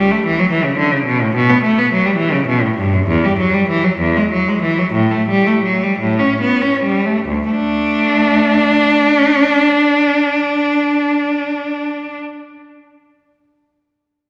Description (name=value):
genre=classical, baroque-style suite movement for unaccompanied cello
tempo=45-74 BPM (dotted quarters)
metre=6/8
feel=rubato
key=D major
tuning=A4 = 440 Hz
part: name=bright cello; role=solo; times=0.0-12.2 s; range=D2 to D4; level=-15 LUFS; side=equal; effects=none
room=wet scoring stage reverb, RT60 2.1 s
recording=none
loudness=-15 LUFS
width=mono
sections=0.0-7.3 A section; 7.3-12.4 B section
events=slowing down 2.2-7.3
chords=0.0 A; 1.4 B5; 3.1 Em; 4.0 E; 4.9 F#m/A; 6.0 A7; 7.3 D5